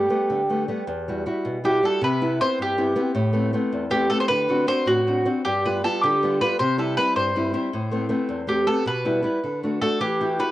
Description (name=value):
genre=italian folk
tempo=105 BPM (dotted quarters)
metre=6/8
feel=rubato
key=E minor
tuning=A4 = 440 Hz
part: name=mandolin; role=melody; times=0.0-10.5 s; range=F#4 to C5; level=-22 LUFS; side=right 1 dB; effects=cassette tape, tape echo
part: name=nylon-string guitar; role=accompaniment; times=0.0-10.5 s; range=E2 to G4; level=-24 LUFS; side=left 1 dB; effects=cassette tape
room=light reverb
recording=home recording on cassette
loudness=-20 LUFS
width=side -15 dB against mid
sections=0.9-10.5 A section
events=none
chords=0.0 Gadd9; 0.9 Emadd9; 2.0 Cmaj7; 3.2 Amadd9; 4.3 D7; 5.4 G7; 6.6 C; 7.7 Amadd9; 8.9 Em/B; 9.4 D; 10.0 Emadd9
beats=0.28 | 0.86 1.45 | 2.02 2.59 | 3.15 3.71 | 4.28 4.85 | 5.44 6.02 | 6.59 7.16 | 7.73 8.29 | 8.86 9.43 | 10.01